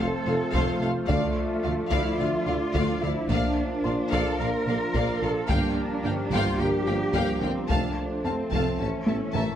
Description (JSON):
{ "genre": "cinematic, hybrid orchestral and electronic film score", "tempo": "109 BPM", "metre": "4/4", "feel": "straight", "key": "D minor", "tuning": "A4 = 441 Hz", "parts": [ { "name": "warm symphonic violin section", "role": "melody", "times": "0.0-9.6 s", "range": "F5 to A5", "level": "-34 LUFS", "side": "left 3 dB", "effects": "none" }, { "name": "warm symphonic violin section", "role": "second line", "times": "0.0-9.6 s", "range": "C5 to F5", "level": "-36 LUFS", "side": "left 4 dB", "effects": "none" }, { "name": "warm symphonic viola section", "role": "accompaniment", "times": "0.0-9.6 s", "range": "A3 to Bb3", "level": "-35 LUFS", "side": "equal", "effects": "none" }, { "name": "bright trombone section", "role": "sustained chords", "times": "0.0-9.6 s", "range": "E3 to Bb3", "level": "-36 LUFS", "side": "right 4 dB", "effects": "none" }, { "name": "dark French horn section", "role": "sustained chords", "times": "0.0-9.6 s", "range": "A3 to A4", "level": "-32 LUFS", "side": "left 3 dB", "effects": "none" }, { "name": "sweeping resonant pad", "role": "sustained chords", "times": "0.0-9.6 s", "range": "E3 to E5", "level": "-34 LUFS", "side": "left 1 dB", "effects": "chorus" }, { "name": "soft round pluck", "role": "arpeggios", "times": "0.0-9.5 s", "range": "D3 to Bb4", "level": "-36 LUFS", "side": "right 2 dB", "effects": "none" }, { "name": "warm symphonic cello section", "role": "bass", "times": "0.0-9.6 s", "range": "A3 to Bb4", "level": "-31 LUFS", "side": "right 2 dB", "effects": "none" }, { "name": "warm symphonic double bass section", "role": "bass", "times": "0.0-9.4 s", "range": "F1 to D2", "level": "-33 LUFS", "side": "right 2 dB", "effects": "none" }, { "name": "warm tuba", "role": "bass", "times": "0.0-9.5 s", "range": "F1 to D2", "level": "-34 LUFS", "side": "right 3 dB", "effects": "none" }, { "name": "felt-muted upright piano", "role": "texture", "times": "0.0-9.6 s", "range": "Bb4 to C6", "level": "-38 LUFS", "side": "left 2 dB", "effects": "tape echo" }, { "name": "taiko ensemble", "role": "drums", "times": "0.5-9.6 s", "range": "none", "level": "-30 LUFS", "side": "left 1 dB", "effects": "none" } ], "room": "moderate scoring stage reverb, RT60 1.6 s", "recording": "none", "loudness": "-23 LUFS", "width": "side -10 dB against mid", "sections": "0.0-9.6 A section", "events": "drum fill 9.1-9.6", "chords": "0.0 F; 1.1 Dm; 3.3 Bb; 5.5 Gm7; 7.7 F; 8.8 A" }